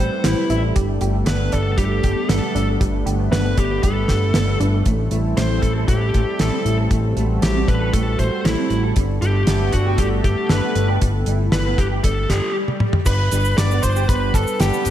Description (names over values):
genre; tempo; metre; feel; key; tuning
synthwave; 117 BPM; 4/4; straight; unclear; A4 = 440 Hz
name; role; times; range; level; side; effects
fuzz lead guitar; melody; 0.0-14.9 s; E4 to D5; -24 LUFS; equal; distortion, analog delay
chorused pulse-width pad; sustained chords; 0.0-14.9 s; G3 to B4; -25 LUFS; right 1 dB; none
analog pluck; arpeggios; 0.0-4.7 s; G3 to G4; -28 LUFS; right 3 dB; chorus, cassette tape, tape echo
fat analog bass; bass; 0.0-14.9 s; G1 to A1; -20 LUFS; equal; none
damped 70s drum kit; drums; 0.2-14.9 s; cabasa, crash cymbal, hi-hat, snare drum, toms; -24 LUFS; equal; none
kick drum; drums; 0.8-14.4 s; none; -20 LUFS; equal; none
electric guitar at the edge of break-up; riff; 4.9-14.8 s; G3 to A4; -30 LUFS; right 3 dB; ensemble chorus, tape echo
swell; sound effects; 12.4-13.1 s; none; -29 LUFS; equal; none
soft synth bell; second line; 13.1-14.9 s; G5 to D6; -28 LUFS; equal; chorus, tape echo
room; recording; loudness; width
moderate lush hall reverb, RT60 1.7 s, small room ambience; dreamy mix soaked in reverb; -16 LUFS; side -11 dB against mid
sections
0.0-13.1 A section; 13.1-14.9 B section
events
swell 12.4-13.1; drum fill 12.7-13.1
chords
0.0 Am7; 0.8 Gadd9; 4.9 Am7; 9.0 Gadd9; 13.1 G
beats
0.24 | 0.76 1.27 1.78 2.29 | 2.81 3.32 3.83 4.35 | 4.86 5.37 5.88 6.40 | 6.91 7.42 7.93 8.45 | 8.96 9.47 9.99 10.50 | 11.01 11.53 12.04 12.55 | 13.06 13.58 14.09 14.60